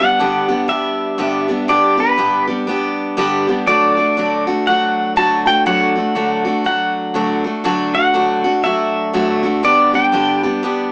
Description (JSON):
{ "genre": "country", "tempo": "121 BPM", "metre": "4/4", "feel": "swing 60% on 8ths", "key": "D major", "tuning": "A4 = 440 Hz", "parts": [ { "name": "pedal steel guitar", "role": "melody", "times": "0.0-10.4 s", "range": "B4 to A5", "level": "-18 LUFS", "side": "equal", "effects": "cassette tape, plate reverb" }, { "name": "picked steel-string acoustic guitar", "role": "accompaniment", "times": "0.0-10.9 s", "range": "G2 to G4", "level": "-19 LUFS", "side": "equal", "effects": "none" } ], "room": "moderate booth ambience, RT60 0.2 s", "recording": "home recording on cassette, small speaker sound", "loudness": "-16 LUFS", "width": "mono", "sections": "0.0-10.9 A section", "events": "none", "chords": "0.0 G; 3.7 D; 9.6 G" }